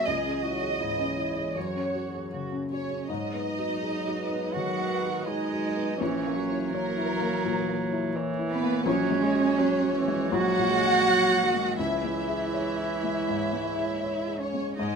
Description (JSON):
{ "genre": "neoclassical piano and strings", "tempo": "82 BPM", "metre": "4/4", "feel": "rubato", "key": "unclear", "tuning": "A4 = 440 Hz", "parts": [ { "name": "dark symphonic violin section", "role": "melody", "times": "0.0-15.0 s", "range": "A#4 to F#5", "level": "-31 LUFS", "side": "equal", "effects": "none" }, { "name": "dark cello", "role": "second line", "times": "0.0-15.0 s", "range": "A#3 to G#4", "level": "-29 LUFS", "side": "right 5 dB", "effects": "none" }, { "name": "felt-muted upright piano", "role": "accompaniment", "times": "0.0-15.0 s", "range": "A#1 to C#5", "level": "-31 LUFS", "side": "left 5 dB", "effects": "none" }, { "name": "dark analog pad", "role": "sustained chords", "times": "0.0-15.0 s", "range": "E3 to A#5", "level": "-37 LUFS", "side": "right 1 dB", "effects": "chorus, phaser" }, { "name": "warm viola", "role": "accompaniment", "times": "4.5-15.0 s", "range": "D#3 to G#3", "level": "-32 LUFS", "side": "right 3 dB", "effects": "none" } ], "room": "moderate studio reverb, RT60 0.8 s", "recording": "minimal, uncompressed stereo recording", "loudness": "-25 LUFS", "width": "side -6 dB against mid", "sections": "0.0-3.1 A section; 3.1-15.0 A section", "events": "none", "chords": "0.1 C#m; 1.6 F#sus2; 3.1 G#m7; 6.0 A#dim; 8.9 F#add9/A#; 11.8 C#m", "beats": "| 0.06 0.80 1.56 2.33 | 3.09 3.82 4.54 5.27 | 6.00 6.72 7.44 8.16 | 8.86 9.58 10.32 11.05 | 11.79 12.53 13.27 14.02 | 14.77" }